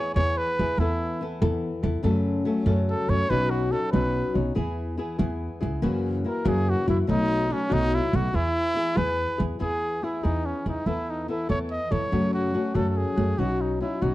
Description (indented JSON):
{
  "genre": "mexican folk, mariachi",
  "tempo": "95 BPM (dotted quarters)",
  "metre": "6/8",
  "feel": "straight",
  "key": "E major",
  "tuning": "A4 = 443 Hz",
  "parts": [
    { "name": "warm trumpet", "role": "melody", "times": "0.0-14.1 s", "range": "C#4 to D#5", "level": "-27 LUFS", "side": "right 1 dB", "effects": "slapback echo" },
    { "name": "flamenco guitar", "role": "accompaniment", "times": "0.0-14.1 s", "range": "F#2 to A4", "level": "-28 LUFS", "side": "left 3 dB", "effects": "none" },
    { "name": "upright bass", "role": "bass", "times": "0.2-14.1 s", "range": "B1 to F#2", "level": "-26 LUFS", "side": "right 1 dB", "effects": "none" }
  ],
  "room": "little or no reverb",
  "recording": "dry, close 1970s-style studio recording",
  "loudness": "-23 LUFS",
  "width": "side -16 dB against mid",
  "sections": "0.0-9.6 A section; 9.6-14.1 A section",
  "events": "none",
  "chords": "0.0 E; 0.8 Asus2/E; 2.0 F#m; 3.3 Badd9; 4.6 E; 5.8 F#7; 7.1 B7; 8.3 E; 10.9 Asus2/E; 12.1 F#m; 13.4 Badd9",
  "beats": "0.15 | 0.78 1.41 | 2.04 2.67 | 3.30 3.93 | 4.56 5.19 | 5.83 6.45 | 7.08 7.70 | 8.33 8.96 | 9.60 10.23 | 10.87 11.49 | 12.12 12.75 | 13.38 14.02"
}